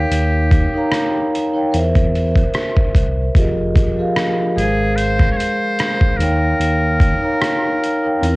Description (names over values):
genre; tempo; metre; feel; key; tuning
lo-fi hip hop; 74 BPM; 4/4; swing 56% on 16ths; unclear; A4 = 440 Hz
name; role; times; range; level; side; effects
trumpet with metal mute; melody; 0.0-8.4 s; G4 to Db5; -22 LUFS; equal; none
vibraphone with soft mallets; accompaniment; 0.0-8.4 s; F3 to Bb5; -18 LUFS; equal; cassette tape
smooth gliding synth bass; bass; 0.0-8.4 s; F1 to E2; -19 LUFS; equal; none
trip hop sampler-style drum kit; drums; 0.1-8.4 s; hi-hat, kick drum, rim click; -17 LUFS; equal; cassette tape
room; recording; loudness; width
little or no reverb; home recording on cassette; -14 LUFS; side -23 dB against mid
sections
0.0-8.4 A section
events
none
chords
0.0 Eb7; 1.7 C7/E; 3.4 Fm11; 4.6 Ab6; 6.2 Eb7